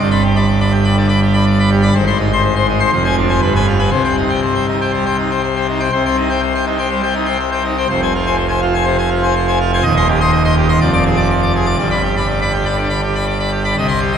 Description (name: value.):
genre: classical, organ toccata.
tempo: 122 BPM.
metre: 4/4.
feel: straight.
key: C minor.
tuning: A4 = 444 Hz.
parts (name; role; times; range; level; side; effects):
pipe organ, full organ; solo; 0.0-14.2 s; Eb1 to D6; -12 LUFS; equal; none.
room: wet church reverb, RT60 3.7 s.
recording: none.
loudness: -13 LUFS.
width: side -8 dB against mid.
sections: 0.0-5.9 A section; 5.9-14.2 B section.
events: none.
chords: 0.0 G; 1.9 Ab; 2.9 Dm7b5/F; 3.4 G7b9; 3.9 Cm; 7.9 Fm; 9.8 Cm/Eb; 10.8 Ddim/F; 11.8 G.